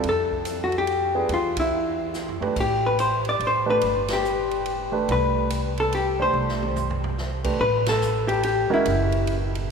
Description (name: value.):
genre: jazz, small-group swing and bop.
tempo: 143 BPM.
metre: 3/4.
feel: swing 64% on 8ths.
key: C major.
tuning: A4 = 441 Hz.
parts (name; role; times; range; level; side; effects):
warm concert grand piano; accompaniment; 0.0-8.8 s; Ab3 to C5; -29 LUFS; right 3 dB; none.
upright bass; bass; 0.0-9.7 s; F#1 to F2; -28 LUFS; right 2 dB; none.
swinging big-band drum kit; drums; 0.0-9.6 s; crash cymbal, hi-hat, kick drum, ride cymbal, snare drum, toms; -34 LUFS; right 2 dB; none.
vintage hollow-body jazz guitar; melody; 0.1-9.5 s; E4 to D5; -23 LUFS; left 2 dB; none.
room: wet cathedral reverb, RT60 5.2 s.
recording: recorded in a church or concert hall.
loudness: -21 LUFS.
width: side -6 dB against mid.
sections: 0.0-7.6 A section; 7.6-9.7 B section.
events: band accent 1.5, 4.0, 7.8; drum fill 2.1-2.6, 6.3-7.2.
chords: 0.0 Fadd9; 1.3 E5; 2.6 Am9; 3.8 Gadd9; 5.1 Csus2; 7.6 A7sus2; 8.9 F#7(no3).